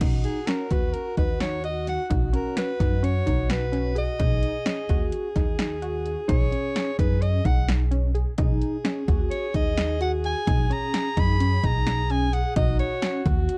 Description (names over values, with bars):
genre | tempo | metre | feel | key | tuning
progressive instrumental, band music in an uneven meter | 258 BPM (eighths) | 9/8 | straight | B major | A4 = 439 Hz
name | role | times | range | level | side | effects
warm alto saxophone | second line | 0.0-13.6 s | F#4 to G#4 | -36 LUFS | equal | none
tight sequenced synth | arpeggios | 0.0-13.6 s | C#4 to G#4 | -34 LUFS | equal | chorus, tape echo
upright bass | bass | 0.0-13.5 s | B1 to F#2 | -28 LUFS | equal | none
punchy analog drum machine | drums | 0.0-13.6 s | crash cymbal, hi-hat, kick drum, snare drum | -28 LUFS | equal | none
breathy soprano saxophone | melody | 0.2-13.2 s | G#4 to B5 | -32 LUFS | equal | none
room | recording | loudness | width
small room ambience | dry, close 1970s-style studio recording | -24 LUFS | mono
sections
0.0-13.6 A section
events
soprano saxophone solo 0.0-13.6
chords
0.0 B69